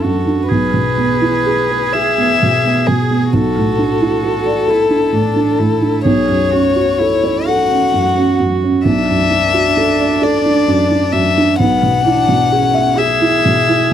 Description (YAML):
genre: neoclassical piano and strings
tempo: 43 BPM (dotted quarters)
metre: 6/8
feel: rubato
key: unclear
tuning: A4 = 440 Hz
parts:
  - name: warm violin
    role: melody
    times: 0.0-13.9 s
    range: G#4 to F#5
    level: -16 LUFS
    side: left 8 dB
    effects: none
  - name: warm cello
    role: second line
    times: 0.0-13.9 s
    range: B3 to G#4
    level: -20 LUFS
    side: right 7 dB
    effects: none
  - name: felt-muted upright piano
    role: accompaniment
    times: 0.0-13.9 s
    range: B1 to E5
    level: -15 LUFS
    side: right 2 dB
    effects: none
room: light reverb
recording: dry, close 1970s-style studio recording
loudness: -11 LUFS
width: side -9 dB against mid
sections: 0.0-13.9 A section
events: none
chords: 0.5 E/B; 3.3 Dsus2/B; 6.0 F#m/B; 8.8 Bm7; 11.6 E/B